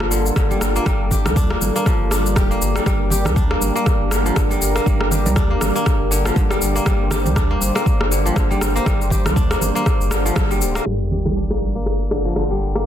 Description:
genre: afro house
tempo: 120 BPM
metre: 4/4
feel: swing 57% on 16ths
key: G minor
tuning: A4 = 440 Hz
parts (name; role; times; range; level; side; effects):
- warm analog pad; sustained chords; 0.0-12.9 s; G3 to C5; -25 LUFS; equal; chorus, sidechain pumping
- kora; arpeggios; 0.0-12.9 s; D3 to G4; -24 LUFS; left 1 dB; sidechain pumping, low-pass filter, ping-pong delay
- warm sub bass; bass; 0.0-12.9 s; D1 to D2; -23 LUFS; equal; sidechain pumping
- deep house drum kit; drums; 0.0-12.8 s; crash cymbal, rim click, shaker; -23 LUFS; left 2 dB; overdrive, low-pass filter on snare, low-pass filter on cymbals, low-pass filter on perc, low-pass filter on room
- electronic kick drum; drums; 0.4-10.5 s; none; -19 LUFS; equal; none
- congas; percussion; 0.5-11.7 s; none; -27 LUFS; right 5 dB; none
- sub drop; sound effects; 10.9-12.9 s; none; -27 LUFS; equal; none
room: light reverb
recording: dense, heavily limited modern master, low-pass filter, faint mains hum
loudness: -16 LUFS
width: side -10 dB against mid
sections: 0.0-10.9 A section; 10.9-12.9 B section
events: band accent 10.4; impact 10.9-12.9; filter sweep on kora 10.9-12.9; filter sweep 10.9-12.9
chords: 0.0 Gm7

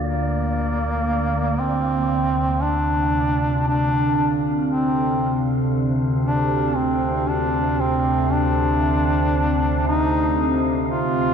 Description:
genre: dark ambient drone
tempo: 58 BPM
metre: 4/4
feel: straight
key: D minor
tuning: A4 = 441 Hz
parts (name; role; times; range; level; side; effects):
- warm duduk; melody; 0.0-11.3 s; Bb3 to F4; -22 LUFS; right 1 dB; ping-pong delay
- deep dark ambient pad; sustained chords; 0.0-11.3 s; D3 to F5; -30 LUFS; equal; chorus, built-in reverb
- analog drone; drone; 0.0-11.3 s; D2 to D3; -21 LUFS; equal; chorus, phaser
- wind-like tuned noise texture; texture; 0.0-11.3 s; D5 to F5; -38 LUFS; right 1 dB; built-in reverb
room: wet cathedral reverb, RT60 6.1 s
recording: dark, warm production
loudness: -18 LUFS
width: side -7 dB against mid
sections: 0.0-1.6 A section; 1.6-11.3 B section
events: filter sweep on synth drone 0.0-1.6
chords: 0.0 Bb/D; 1.6 Dm7

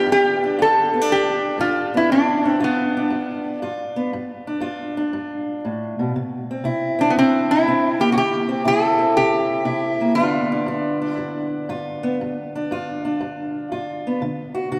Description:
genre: acoustic country blues, solo or duo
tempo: 119 BPM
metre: 4/4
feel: swing 68% on 8ths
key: G mixolydian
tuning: A4 = 444 Hz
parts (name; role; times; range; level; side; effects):
- metal-body resonator slide guitar; melody; 0.0-3.6, 7.0-11.6 s; B3 to A4; -21 LUFS; equal; none
- fingerpicked steel-string acoustic guitar; accompaniment; 0.0-14.8 s; G2 to F#4; -25 LUFS; equal; none
room: wet church reverb, RT60 3.2 s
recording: recorded in a church or concert hall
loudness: -21 LUFS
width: mono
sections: 0.0-14.8 A section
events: none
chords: 0.0 G7; 6.1 C; 10.2 G7; 14.2 D

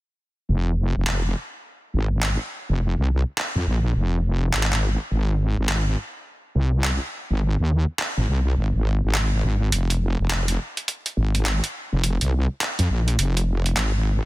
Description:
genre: glitch hop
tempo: 104 BPM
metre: 4/4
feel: swing 62% on 16ths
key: F minor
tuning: A4 = 439 Hz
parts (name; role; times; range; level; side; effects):
- wobble bass; bass; 0.5-14.2 s; F1 to F2; -20 LUFS; equal; chorus, overdrive
- boom bap sampler-style drum kit; drums; 1.1-13.9 s; handclaps, hi-hat; -26 LUFS; right 1 dB; overdrive
room: little or no reverb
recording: dense, heavily limited modern master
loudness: -20 LUFS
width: side -18 dB against mid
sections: 0.5-14.3 A section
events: none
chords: none

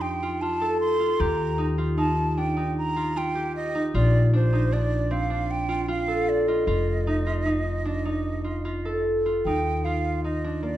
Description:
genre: contemporary instrumental, chamber music in an uneven meter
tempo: 153 BPM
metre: 7/4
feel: straight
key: Eb lydian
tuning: A4 = 439 Hz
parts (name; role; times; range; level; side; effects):
- breathy concert flute; melody; 0.0-10.8 s; C5 to C6; -29 LUFS; right 2 dB; none
- concert harp; arpeggios; 0.0-10.8 s; Bb3 to A4; -26 LUFS; right 1 dB; none
- upright bass; bass; 0.0-10.8 s; F1 to F2; -26 LUFS; left 1 dB; none
room: moderate recital hall reverb, RT60 1.4 s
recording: dark, warm production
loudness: -22 LUFS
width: side -13 dB against mid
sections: 0.0-9.4 A section; 9.4-10.8 B section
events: none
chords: 0.0 F9; 1.2 Eb; 3.9 Bbmaj7; 6.7 F7; 9.4 Ebmaj9

